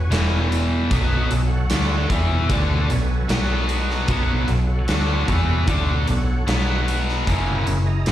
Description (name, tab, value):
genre	blues rock power trio and southern rock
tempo	75 BPM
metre	4/4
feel	straight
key	unclear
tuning	A4 = 439 Hz
part	overdriven tonewheel organ	sustained chords	0.0-8.1 s	E4 to B5	-31 LUFS	right 2 dB	chorus vibrato, slow rotary speaker
part	distorted electric guitar	riff	0.0-8.1 s	E2 to E4	-23 LUFS	equal	overdrive, slapback echo
part	vintage muted fingered electric bass	bass	0.0-8.1 s	E1 to E2	-21 LUFS	equal	none
part	big rock drum kit	drums	0.1-8.1 s	hi-hat, kick drum, snare drum	-25 LUFS	equal	none
room	little or no reverb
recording	live gig heard through the venue's PA, recital hall reverb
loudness	-18 LUFS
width	side -12 dB against mid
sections	0.0-8.1 A section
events	tonewheel organ fill 1.7-4.1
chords	0.0 E; 0.9 B7; 7.3 F#7